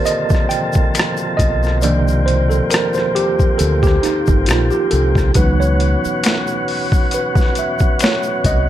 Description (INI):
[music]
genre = R&B, neo-soul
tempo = 68 BPM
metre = 4/4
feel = swing 55% on 16ths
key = unclear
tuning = A4 = 440 Hz
[part]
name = mellow tine electric piano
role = accompaniment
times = 0.0-8.7 s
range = D3 to G5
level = -18 LUFS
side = right 2 dB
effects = medium stereo tremolo
[part]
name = tonewheel organ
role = sustained chords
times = 0.0-8.7 s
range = F3 to A4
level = -22 LUFS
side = left 1 dB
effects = slow rotary speaker
[part]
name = boom bap sampler-style drum kit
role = drums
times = 0.1-8.7 s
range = hi-hat, kick drum, rim click, snare drum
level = -17 LUFS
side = equal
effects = overdrive
[part]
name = egg shaker and finger snaps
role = percussion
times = 0.1-8.7 s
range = none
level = -29 LUFS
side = left 8 dB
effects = none
[part]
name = deep dub fingered electric bass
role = bass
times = 1.4-8.7 s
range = G1 to D2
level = -16 LUFS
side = equal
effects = none
[sound]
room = light reverb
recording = none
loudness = -13 LUFS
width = side -12 dB against mid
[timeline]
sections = 0.0-8.7 A section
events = tine electric piano solo 0.0-8.7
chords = 0.0 Cm11; 5.4 C#m11